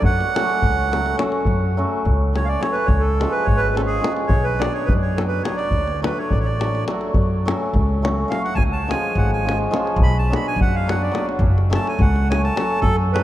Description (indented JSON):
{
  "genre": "balkan folk, Balkan wedding band",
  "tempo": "211 BPM (eighths)",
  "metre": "5/8",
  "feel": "straight",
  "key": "F# harmonic minor",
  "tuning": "A4 = 441 Hz",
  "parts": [
    { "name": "accordion", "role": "melody", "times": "0.0-13.2 s", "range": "G#4 to B5", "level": "-24 LUFS", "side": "right 3 dB", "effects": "none" },
    { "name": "hammered dulcimer", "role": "accompaniment", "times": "0.0-13.2 s", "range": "E#3 to F#4", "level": "-24 LUFS", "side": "equal", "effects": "none" },
    { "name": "upright bass", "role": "bass", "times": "0.0-13.2 s", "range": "F#1 to F#2", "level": "-21 LUFS", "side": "equal", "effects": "none" },
    { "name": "davul", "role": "percussion", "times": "0.0-13.2 s", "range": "none", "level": "-23 LUFS", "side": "left 1 dB", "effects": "none" }
  ],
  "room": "moderate cathedral reverb, RT60 6.6 s",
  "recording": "in a vast, echoing space",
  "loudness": "-17 LUFS",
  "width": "side -13 dB against mid",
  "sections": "0.0-1.5 A section; 1.5-12.8 B section",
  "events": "accordion solo 1.5-12.8",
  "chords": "0.0 F#m; 2.9 C#; 4.3 Bm; 5.7 D; 7.1 F#m; 8.6 C#; 10.0 Bm; 11.4 F#m"
}